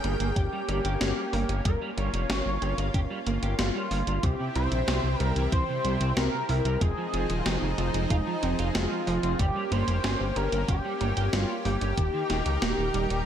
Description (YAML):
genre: synthwave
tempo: 93 BPM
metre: 4/4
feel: straight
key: unclear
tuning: A4 = 440 Hz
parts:
  - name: wide unison lead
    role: melody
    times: 0.0-13.3 s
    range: Eb4 to Db5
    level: -32 LUFS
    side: equal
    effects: lush chorus, tape echo
  - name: lush unison pad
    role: sustained chords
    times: 0.0-13.3 s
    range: C3 to G5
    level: -34 LUFS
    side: equal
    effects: chorus, sidechain pumping
  - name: wide unison pluck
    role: arpeggios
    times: 0.0-13.2 s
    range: Eb3 to G4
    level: -36 LUFS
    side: right 3 dB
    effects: ping-pong delay
  - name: clean electric guitar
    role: riff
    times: 0.0-13.2 s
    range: C3 to G4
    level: -36 LUFS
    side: right 4 dB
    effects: ensemble chorus, ping-pong delay
  - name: fat analog bass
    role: bass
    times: 0.0-13.2 s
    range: Eb1 to Db2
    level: -29 LUFS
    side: equal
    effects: none
  - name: gated 80s digital drum machine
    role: drums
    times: 0.0-13.2 s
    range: hi-hat, snare drum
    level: -33 LUFS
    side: equal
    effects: gated reverb, gated reverb snare
  - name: electronic kick drum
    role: drums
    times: 0.4-12.1 s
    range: none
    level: -27 LUFS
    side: equal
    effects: none
room: light reverb, digital ambience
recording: none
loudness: -25 LUFS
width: side -9 dB against mid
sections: 0.0-13.3 A section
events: none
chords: 0.0 Gdim; 4.2 C; 6.8 Fm7; 9.4 Gdim; 12.0 Eb